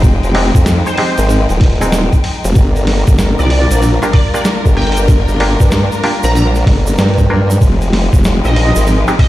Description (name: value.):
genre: glitch hop.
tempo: 95 BPM.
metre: 4/4.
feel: swing 64% on 16ths.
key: unclear.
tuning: A4 = 441 Hz.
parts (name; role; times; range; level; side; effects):
warm symphonic string section; sustained chords; 0.0-9.3 s; F3 to G5; -19 LUFS; left 1 dB; sidechain pumping.
auto-wah clav; stabs; 0.0-9.2 s; Ab3 to Bb4; -19 LUFS; equal; vintage 12-bit sampler grit, sidechain pumping, ping-pong delay.
formant-sweep wobble bass; bass; 0.0-9.0 s; Eb1 to G2; -12 LUFS; equal; chorus.
boom bap sampler-style drum kit; drums; 0.0-9.3 s; hi-hat, rim click, snare drum; -21 LUFS; equal; none.
electronic kick drum; drums; 0.0-9.3 s; none; -10 LUFS; equal; none.
egg shaker; percussion; 0.0-9.2 s; none; -29 LUFS; right 4 dB; none.
sync lead; melody; 0.9-9.3 s; C5 to Bb5; -22 LUFS; right 1 dB; ensemble chorus, cassette tape, ping-pong delay.
room: little or no reverb.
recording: played on a big sound system in a bare room, stone room reverb.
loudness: -9 LUFS.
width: side -15 dB against mid.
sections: 0.0-9.3 A section.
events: none.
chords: 0.0 Fm9; 2.6 Gm7; 7.6 Fm9.